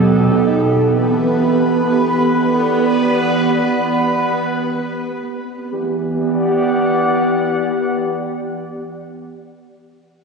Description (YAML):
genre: IDM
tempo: free time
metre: none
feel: none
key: E minor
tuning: A4 = 440 Hz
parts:
  - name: warbly tape-like pad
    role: sustained chords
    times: 0.0-9.1 s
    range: B2 to F#5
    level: -16 LUFS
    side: right 1 dB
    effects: chorus, built-in reverb
  - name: bubbling stepped-filter texture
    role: texture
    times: 0.0-5.8 s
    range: B3 to D#6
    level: -20 LUFS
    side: right 1 dB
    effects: chorus, built-in reverb
  - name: harp-like synth pluck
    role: arpeggios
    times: 0.2-0.6 s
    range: B2 to D#4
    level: -17 LUFS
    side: right 2 dB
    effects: chorus, tape echo
room: wet lush hall reverb, RT60 2.6 s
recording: recorded on a phone in the room, club reverb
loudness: -14 LUFS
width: side -4 dB against mid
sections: 0.6-5.7 A section; 5.7-8.3 B section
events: filter sweep on ambient pad 0.6-5.7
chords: 0.0 B7; 0.6 Em7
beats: free time